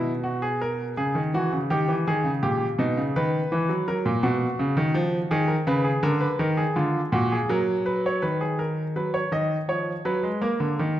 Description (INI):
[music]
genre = classical, baroque-style two-part invention for grand piano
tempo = 82 BPM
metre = 3/4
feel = straight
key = unclear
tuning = A4 = 440 Hz
[part]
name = clear baby grand piano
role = solo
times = 0.0-11.0 s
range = A#2 to D#5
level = -22 LUFS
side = equal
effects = none
[sound]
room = wet recital hall reverb, RT60 1.6 s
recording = none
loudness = -22 LUFS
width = side -12 dB against mid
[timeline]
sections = 0.0-8.2 A section; 8.2-11.0 B section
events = none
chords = 0.0 G#m; 1.0 C#madd11; 1.7 D#; 3.1 Badd11/D#; 3.9 D#m; 5.3 Bmaj13; 6.0 A#/D; 7.5 F#add11; 8.2 B/D#; 9.7 Fdim; 10.4 A#